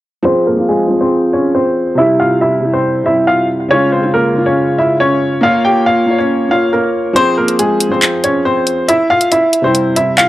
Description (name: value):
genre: hip hop, drill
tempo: 139 BPM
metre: 4/4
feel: half-time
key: F harmonic minor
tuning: A4 = 440 Hz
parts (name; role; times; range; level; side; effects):
- clear upright piano; melody; 0.2-10.3 s; Ab3 to G5; -12 LUFS; equal; low-pass filter, tape echo
- dark concert grand piano; accompaniment; 0.2-10.3 s; C3 to Db5; -14 LUFS; equal; low-pass filter
- drill drum kit; drums; 7.2-10.3 s; handclaps, hi-hat; -14 LUFS; equal; none
room: light reverb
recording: dry, gritty hardware recording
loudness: -10 LUFS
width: side -15 dB against mid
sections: 0.3-7.2 A section; 7.2-10.3 B section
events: filter sweep 0.3-7.2; kick muted 7.2-10.3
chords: 0.3 Fm; 2.0 C; 3.7 Db; 5.4 Bbm; 7.2 Fm; 8.9 C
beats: | 0.25 0.68 1.11 1.55 | 1.98 2.41 2.84 3.27 | 3.71 4.14 4.57 5.00 | 5.43 5.86 6.29 6.73 | 7.16 7.59 8.02 8.45 | 8.88 9.32 9.75 10.18